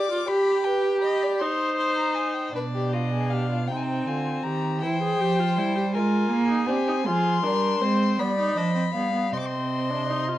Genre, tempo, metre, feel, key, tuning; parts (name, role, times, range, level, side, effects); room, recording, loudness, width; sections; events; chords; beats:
classical, baroque-style fugue for string quartet; 53 BPM (dotted quarters); 6/8; straight; F minor, C minor from 7.1 s; A4 = 440 Hz
warm violin; melody; 0.0-10.4 s; D5 to D6; -30 LUFS; left 6 dB
warm violin; second line; 0.0-10.4 s; Eb4 to F5; -29 LUFS; left 2 dB
rich viola; accompaniment; 0.0-10.4 s; B3 to Ab4; -27 LUFS; right 2 dB
warm cello; bass; 2.5-10.4 s; B2 to C4; -26 LUFS; right 3 dB
moderate large studio reverb, RT60 1.2 s; worn, warbling old tape, cassette tape, warbly pitch drift; -22 LUFS; side -14 dB against mid
0.0-2.5 A section; 2.5-10.4 B section
0.0 G; 1.4 Cm/Eb; 2.5 G7/B; 3.7 Cm; 4.8 C/E; 5.9 Fm/Ab; 7.1 Fm; 8.2 G7; 9.3 Cm
| 0.29 1.41 | 2.54 3.69 | 4.82 5.94 | 7.06 8.20 | 9.33